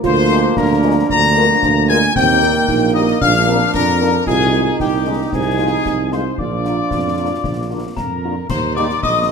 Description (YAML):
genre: military-style march for wind band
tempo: 113 BPM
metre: 2/4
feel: straight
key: unclear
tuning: A4 = 440 Hz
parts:
  - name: clear trumpet section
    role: melody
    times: 0.0-9.3 s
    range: G4 to Bb5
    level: -20 LUFS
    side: left 3 dB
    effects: none
  - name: dark euphonium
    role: second line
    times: 0.0-8.2 s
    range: Bb3 to F4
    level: -21 LUFS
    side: right 5 dB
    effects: none
  - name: warm trombone section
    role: sustained chords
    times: 0.0-8.9 s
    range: Eb3 to F4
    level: -22 LUFS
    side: right 3 dB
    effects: none
  - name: mellow tuba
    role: bass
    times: 0.0-9.3 s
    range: Bb1 to F2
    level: -19 LUFS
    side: right 4 dB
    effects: none
  - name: clash cymbals, concert bass drum and concert snare drum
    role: drums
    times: 0.0-9.3 s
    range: none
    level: -27 LUFS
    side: left 2 dB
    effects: none
  - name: mellow wooden piccolo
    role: second line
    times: 0.1-9.3 s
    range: G5 to Bb6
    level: -20 LUFS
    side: left 6 dB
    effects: none
  - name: mellow French horn section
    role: accompaniment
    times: 0.3-9.3 s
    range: G3 to Bb4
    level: -24 LUFS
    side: left 4 dB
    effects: none
  - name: glockenspiel with soft plastic mallets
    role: second line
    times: 8.0-9.3 s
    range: Bb5 to Eb6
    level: -22 LUFS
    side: left 6 dB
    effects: none
room: wet large studio reverb, RT60 1.2 s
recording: none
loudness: -13 LUFS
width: side -5 dB against mid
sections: 0.0-8.5 A section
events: none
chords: 0.0 Bb7/D; 2.2 Eb; 3.2 Bb; 4.3 Ab/C; 5.3 Fm7/C; 6.4 Bb; 8.5 Eb